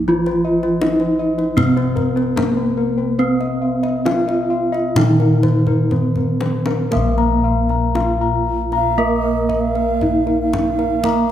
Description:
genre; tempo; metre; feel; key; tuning
Javanese gamelan; 58-84 BPM; 4/4; straight; unclear; A4 = 440 Hz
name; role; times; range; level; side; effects
gamelan-type bronze metallophone; melody; 0.0-11.3 s; Bb3 to Bb4; -20 LUFS; equal; none
gamelan-type bronze metallophone; accompaniment; 0.0-11.3 s; Eb3+30c to C4-50c; -22 LUFS; right 3 dB; none
gamelan-type bossed gongs; bass; 0.0-11.3 s; Bb1 to C5-50c; -21 LUFS; left 1 dB; none
gamelan-type bossed gongs; arpeggios; 0.3-11.3 s; Bb4 to Bb5; -23 LUFS; left 5 dB; none
kendang; percussion; 0.3-11.3 s; none; -26 LUFS; left 2 dB; none
breathy bright low xiao; second line; 8.8-11.3 s; Eb5+36c to F5-38c; -22 LUFS; right 4 dB; none
room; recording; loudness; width
moderate concert hall reverb, RT60 2.4 s; close, detailed microphones; -15 LUFS; side -11 dB against mid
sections
0.0-6.9 A section; 6.9-11.3 B section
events
drum fill 5.7-6.9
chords
none

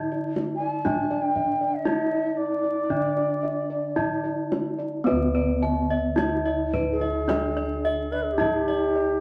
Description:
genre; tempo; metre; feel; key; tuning
Javanese gamelan; 54-61 BPM; 4/4; straight; D pelog barang; A4 = 440 Hz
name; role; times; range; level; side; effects
gamelan-type bronze metallophone; melody; 0.0-9.2 s; B3+20c to E4-50c; -29 LUFS; equal; none
gamelan-type bossed gongs; arpeggios; 0.0-9.2 s; D5 to E5-50c; -35 LUFS; equal; none
gamelan-type bossed gongs; bass; 0.0-9.2 s; D2 to B4+20c; -35 LUFS; equal; none
kendang; percussion; 0.1-8.7 s; none; -34 LUFS; equal; none
reedy bansuri; second line; 0.6-9.2 s; G4+30c to A5-41c; -29 LUFS; equal; none
gamelan-type bronze metallophone; arpeggios; 5.1-9.2 s; B4+20c to A5-40c; -31 LUFS; equal; none
room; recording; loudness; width
moderate club reverb, RT60 0.5 s; vinyl crackle; -25 LUFS; mono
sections
0.0-5.1 A section; 5.1-9.2 B section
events
none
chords
none

